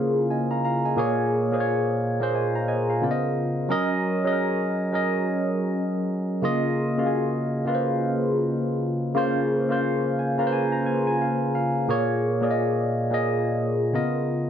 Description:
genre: R&B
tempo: 88 BPM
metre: 4/4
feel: swing 60% on 16ths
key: Db major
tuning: A4 = 440 Hz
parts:
  - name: barky tine electric piano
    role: solo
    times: 0.0-14.5 s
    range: Bb2 to Bb5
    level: -22 LUFS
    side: equal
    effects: overdrive, phaser
room: moderate studio reverb, RT60 0.8 s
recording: none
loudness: -22 LUFS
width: side -8 dB against mid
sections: 0.0-14.5 A section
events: tine electric piano fill 9.8-11.9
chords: 0.0 Db69; 1.0 Bbm7; 3.0 Db13; 3.7 Gb6; 6.4 Db69; 11.9 Bbm7; 13.9 Db13

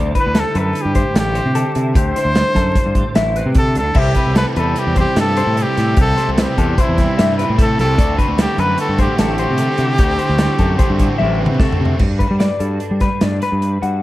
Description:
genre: math rock and midwest emo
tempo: 149 BPM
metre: 5/4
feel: straight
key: unclear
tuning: A4 = 441 Hz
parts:
  - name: twelve-string electric guitar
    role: accompaniment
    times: 0.0-14.0 s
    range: G2 to B4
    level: -24 LUFS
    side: right 3 dB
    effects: analog chorus
  - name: clean electric guitar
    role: arpeggios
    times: 0.0-14.0 s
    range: G4 to F#5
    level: -23 LUFS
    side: left 5 dB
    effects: none
  - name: growling fingered electric bass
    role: bass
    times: 0.0-14.0 s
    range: A1 to G3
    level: -19 LUFS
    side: equal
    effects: overdrive
  - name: clear trumpet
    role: melody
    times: 0.2-11.6 s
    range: E4 to C5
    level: -20 LUFS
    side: equal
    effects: none
  - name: modern studio drum kit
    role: drums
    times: 0.2-13.9 s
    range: crash cymbal, hi-hat, kick drum, snare drum, toms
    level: -17 LUFS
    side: equal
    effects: none
  - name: raw garage guitar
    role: riff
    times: 3.9-12.0 s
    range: C3 to F#4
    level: -25 LUFS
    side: right 1 dB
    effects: overdrive
room: light reverb, small room ambience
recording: vinyl crackle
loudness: -13 LUFS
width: side -16 dB against mid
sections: 0.0-12.0 A section; 12.0-14.0 B section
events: drum fill 11.2-12.0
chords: 0.0 D9sus4; 4.0 C6; 8.0 D9sus4; 12.0 Gmaj9

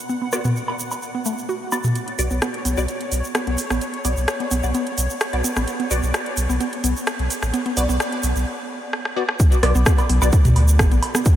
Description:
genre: minimal techno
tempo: 129 BPM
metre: 4/4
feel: straight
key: B minor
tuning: A4 = 441 Hz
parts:
  - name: pulsing gated texture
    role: texture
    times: 0.0-8.5 s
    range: C#5 to F#5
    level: -33 LUFS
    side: left 2 dB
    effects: chorus, built-in reverb, sidechain pumping
  - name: mallet-like synth pluck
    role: riff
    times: 0.1-11.2 s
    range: A3 to F#4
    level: -27 LUFS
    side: right 1 dB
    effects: chorus, cassette tape, sidechain pumping, analog delay
  - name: egg shaker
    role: percussion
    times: 0.1-11.4 s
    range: none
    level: -31 LUFS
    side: right 4 dB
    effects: none
  - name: filtered dub chord stab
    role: stabs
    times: 0.3-10.3 s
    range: B3 to D5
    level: -29 LUFS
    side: left 1 dB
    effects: phaser, ensemble chorus, diffuse ambient delay
  - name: booming analog drum machine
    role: percussion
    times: 0.3-1.9, 9.6-11.1 s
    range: rim click, toms, woodblock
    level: -24 LUFS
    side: equal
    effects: small room reverb, diffuse ambient delay
  - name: house drum kit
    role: drums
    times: 2.0-11.4 s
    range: hi-hat, rim click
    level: -26 LUFS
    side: equal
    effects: high-pass filter on hats, small room reverb, high-pass filter on snare
  - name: saturated sub bass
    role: bass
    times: 2.2-11.0 s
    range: F#1 to D2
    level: -20 LUFS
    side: equal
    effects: tube saturation, sidechain pumping
  - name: electronic kick drum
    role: drums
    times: 9.4-11.4 s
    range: none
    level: -16 LUFS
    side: equal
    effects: small room reverb
room: moderate huge ambient reverb, RT60 5.2 s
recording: dreamy mix soaked in reverb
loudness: -18 LUFS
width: side -12 dB against mid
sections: 0.0-2.0 A section; 2.0-9.4 B section; 9.4-11.4 C section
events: build-up 2.0-9.4; filter sweep on synth arpeggio sound 2.0-9.4; break 8.5-9.4; drum fill 8.9-9.4; drop 9.4-11.4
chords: 0.0 B5; 2.0 N.C.; 9.4 Bm

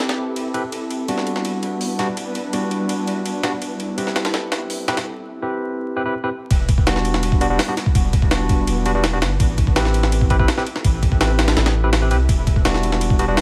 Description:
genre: drum and bass, jungle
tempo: 166 BPM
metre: 4/4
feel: straight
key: E minor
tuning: A4 = 437 Hz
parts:
  - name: ethereal airy pad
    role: sustained chords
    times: 0.0-13.3 s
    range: G3 to E5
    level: -31 LUFS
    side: equal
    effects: ensemble chorus, built-in reverb, vintage 12-bit sampler grit
  - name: barky tine electric piano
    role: stabs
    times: 0.0-13.4 s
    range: G3 to B4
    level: -26 LUFS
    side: equal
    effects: overdrive, vintage 12-bit sampler grit, low-pass filter, dub echo
  - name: jungle sampler-style drum kit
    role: drums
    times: 0.0-13.4 s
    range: hi-hat, kick drum, ride cymbal, snare drum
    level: -22 LUFS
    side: equal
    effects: high-pass filter on cymbals, studio reverb, high-pass filter on snare, high-pass filter on hats, high-pass filter on kick
  - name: soft dub sub bass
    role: bass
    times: 6.5-13.4 s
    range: E1 to C2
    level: -23 LUFS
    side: equal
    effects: none
room: light reverb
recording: vinyl crackle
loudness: -20 LUFS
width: mono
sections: 0.0-6.5 A section; 6.5-13.4 B section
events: filter sweep on tine electric piano 0.0-6.5; break 5.1-6.5; drop 6.5-13.4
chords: 0.0 Am7; 0.7 Em7; 3.6 Am7; 6.5 Em7; 9.4 Am7; 12.3 Em7

